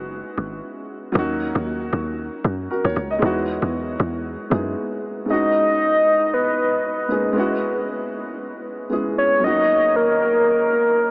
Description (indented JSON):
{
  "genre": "amapiano",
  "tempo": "116 BPM",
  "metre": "4/4",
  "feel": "swing 55% on 16ths",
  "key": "G# minor",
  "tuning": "A4 = 442 Hz",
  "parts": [
    { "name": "dark baby grand piano", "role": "accompaniment", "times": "0.0-11.1 s", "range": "G#2 to D#5", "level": "-24 LUFS", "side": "equal", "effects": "none" },
    { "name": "deep log drum bass", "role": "bass", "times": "0.0-4.8 s", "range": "F#1 to F#2", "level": "-24 LUFS", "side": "equal", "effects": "none" },
    { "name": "soft octave-layered synth lead", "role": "melody", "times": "5.3-11.1 s", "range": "A#4 to D#5", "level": "-17 LUFS", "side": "equal", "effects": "chorus, diffuse ambient delay" }
  ],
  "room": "wet huge ambient reverb, RT60 8.2 s",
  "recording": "dreamy mix soaked in reverb, AM radio sound",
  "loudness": "-18 LUFS",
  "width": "side -27 dB against mid",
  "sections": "0.0-5.3 A section; 5.3-11.1 B section",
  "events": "drop 0.0-5.3",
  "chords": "0.0 F#9sus4; 1.2 D#m7; 3.2 Emaj9; 5.3 G#m11; 7.4 F#9sus4; 9.4 D#m7"
}